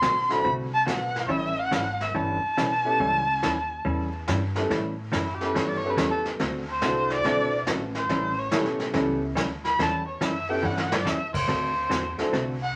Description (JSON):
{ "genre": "country, western swing", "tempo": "141 BPM", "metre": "4/4", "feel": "swing 66% on 8ths", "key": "A mixolydian", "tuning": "A4 = 436 Hz", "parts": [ { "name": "dark erhu", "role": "melody", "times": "0.0-12.8 s", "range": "E4 to C6", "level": "-28 LUFS", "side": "equal", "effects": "none" }, { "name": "hollow-body jazz guitar", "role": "accompaniment", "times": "0.0-12.6 s", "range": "D3 to A4", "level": "-32 LUFS", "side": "equal", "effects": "none" }, { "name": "upright bass", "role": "bass", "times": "0.0-12.7 s", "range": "G1 to A2", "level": "-36 LUFS", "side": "equal", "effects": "none" }, { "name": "vintage brush drum kit", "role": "drums", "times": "0.0-12.8 s", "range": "brushed snare drum, crash cymbal, hi-hat, kick drum, snare drum", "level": "-34 LUFS", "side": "equal", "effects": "none" }, { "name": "clear upright piano", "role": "accompaniment", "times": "0.3-12.3 s", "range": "B3 to A4", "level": "-31 LUFS", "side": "equal", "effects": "none" } ], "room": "wet studio reverb, RT60 0.6 s", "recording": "vinyl crackle", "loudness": "-26 LUFS", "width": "mono", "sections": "0.0-4.7 A section; 4.7-12.8 B section", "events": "erhu solo 4.7-12.8; drum fill 10.6-11.1", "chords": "0.0 D7; 1.3 A9; 6.4 D9; 8.1 A9; 11.5 D9" }